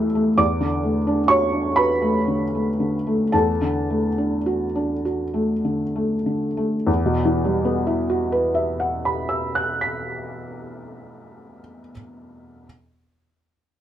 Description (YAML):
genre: neoclassical minimalist piano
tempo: 32-45 BPM (dotted quarters)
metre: 6/8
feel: rubato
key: E minor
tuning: A4 = 438 Hz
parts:
  - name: felt-muted upright piano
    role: solo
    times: 0.0-12.7 s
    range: E2 to B6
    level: -19 LUFS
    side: equal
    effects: none
room: wet studio ambience, RT60 0.5 s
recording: none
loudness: -19 LUFS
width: side -11 dB against mid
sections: 0.0-6.9 A section; 6.9-10.5 B section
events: slowing down 0.0-6.9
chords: 0.4 D/E; 6.9 Emadd9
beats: | 0.38 1.76 | 3.33 5.05 | 6.87 8.68